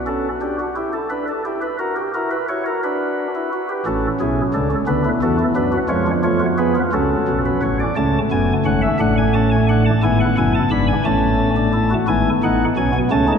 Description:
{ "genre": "classical, baroque-style 4-part fugue for pipe organ", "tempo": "58 BPM (dotted quarters)", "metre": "6/8", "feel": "straight", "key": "B minor, A major from 8.0 s", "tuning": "A4 = 441 Hz", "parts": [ { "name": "chamber organ, flutes", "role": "solo", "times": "0.0-13.4 s", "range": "F#1 to B5", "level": "-16 LUFS", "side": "equal", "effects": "none" } ], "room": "wet cathedral reverb, RT60 4.9 s", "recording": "minimal, uncompressed stereo recording", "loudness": "-16 LUFS", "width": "side -6 dB against mid", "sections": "0.0-8.0 A section; 8.0-13.4 B section", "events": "none", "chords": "0.0 Bm (rootless); 0.8 Em; 1.8 F#7; 2.8 Bm/D; 3.9 F#m/A; 4.9 Bm/D; 5.9 C#7/E#; 6.9 F#m; 8.0 A; 9.0 D/A; 10.0 E7; 11.1 A; 12.1 E/G#" }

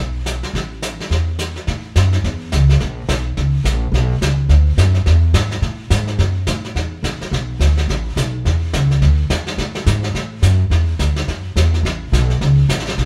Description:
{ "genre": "country, western swing", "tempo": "212 BPM", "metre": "4/4", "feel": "swing 60% on 8ths", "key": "A major", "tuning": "A4 = 440 Hz", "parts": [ { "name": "upright bass", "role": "bass", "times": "0.0-13.1 s", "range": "A1 to A2", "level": "-18 LUFS", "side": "equal", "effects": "none" }, { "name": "jazz brush drum kit", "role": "drums", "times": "0.3-13.1 s", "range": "brushed snare drum, hi-hat, snare drum", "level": "-26 LUFS", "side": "equal", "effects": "none" } ], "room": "moderate studio reverb, RT60 0.6 s", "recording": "band playing live in one room", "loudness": "-17 LUFS", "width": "mono", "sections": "0.0-1.7 A section; 1.7-13.1 B section", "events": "none", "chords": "none" }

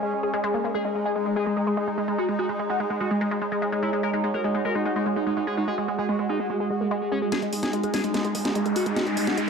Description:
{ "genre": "psychedelic trance", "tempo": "146 BPM", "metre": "4/4", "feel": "straight", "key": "unclear", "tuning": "A4 = 437 Hz", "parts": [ { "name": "bubbling stepped-filter texture", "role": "sustained chords", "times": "0.0-9.5 s", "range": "G#3 to F#4", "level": "-30 LUFS", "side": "equal", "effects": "chorus, built-in reverb" }, { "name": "wide unison pluck", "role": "riff", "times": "0.0-9.4 s", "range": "G#3 to G#4", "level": "-29 LUFS", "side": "moving between left 4 dB and right 5 dB", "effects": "auto-pan, ping-pong delay" }, { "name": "warbly tape-like pad", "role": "texture", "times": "0.0-9.5 s", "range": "G#3 to D#6", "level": "-31 LUFS", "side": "right 1 dB", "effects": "chorus, built-in reverb" }, { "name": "overdriven synth lead", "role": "melody", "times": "0.7-9.4 s", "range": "G#3 to A#4", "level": "-28 LUFS", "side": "equal", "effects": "phaser, tape echo" }, { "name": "techno drum kit", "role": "drums", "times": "7.3-9.5 s", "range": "hi-hat, snare drum", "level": "-28 LUFS", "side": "equal", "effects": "overdrive, studio reverb" }, { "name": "riser", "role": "sound effects", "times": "8.0-9.5 s", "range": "none", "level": "-33 LUFS", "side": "equal", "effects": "none" } ], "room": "moderate digital room reverb, RT60 1.1 s, digital ambience", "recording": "none", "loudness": "-23 LUFS", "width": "side -5 dB against mid", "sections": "0.0-7.3 A section; 7.3-9.5 B section", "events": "build-up 7.3-9.5; drum fill 7.3-9.5; riser 8.0-9.5", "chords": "0.0 G#5" }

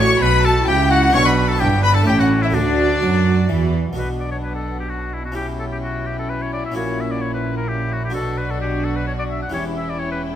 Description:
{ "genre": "classical, baroque-style concerto movement with solo episodes", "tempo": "129 BPM", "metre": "3/4", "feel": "straight", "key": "D major, B minor from 4.0 s", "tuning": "A4 = 440 Hz", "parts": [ { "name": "clear oboe", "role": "melody", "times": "0.0-10.2 s", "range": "D4 to F#5", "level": "-24 LUFS", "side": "left 3 dB", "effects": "none" }, { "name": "rich chamber violin section", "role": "melody", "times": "0.0-10.4 s", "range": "D5 to C#6", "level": "-26 LUFS", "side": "left 3 dB", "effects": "none" }, { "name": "warm chamber violin section", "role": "second line", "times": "0.0-10.4 s", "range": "D4 to C#6", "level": "-25 LUFS", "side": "left 3 dB", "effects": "none" }, { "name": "harpsichord", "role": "accompaniment", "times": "0.0-10.4 s", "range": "E2 to A4", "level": "-29 LUFS", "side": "equal", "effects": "none" }, { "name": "rich studio viola section", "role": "accompaniment", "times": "0.0-10.4 s", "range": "B3 to F#4", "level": "-25 LUFS", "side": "right 1 dB", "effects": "none" }, { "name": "rich chamber cello section", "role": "bass", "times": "0.0-10.4 s", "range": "E2 to F#3", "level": "-23 LUFS", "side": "right 2 dB", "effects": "none" }, { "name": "rich chamber double bass section", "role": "bass", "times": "0.0-10.4 s", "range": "E1 to F#2", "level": "-24 LUFS", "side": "right 2 dB", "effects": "none" } ], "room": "moderate scoring stage reverb, RT60 1.9 s", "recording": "none", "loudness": "-17 LUFS", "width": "side -10 dB against mid", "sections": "0.0-4.0 A section; 4.0-10.4 B section", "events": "none", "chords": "0.0 F#m/A; 1.1 Bm; 1.6 Em7/G; 2.1 A; 2.5 D; 4.0 Bm; 5.4 C#m7b5/B; 6.8 F#7/A#; 8.1 Bm; 9.5 C#dim/E" }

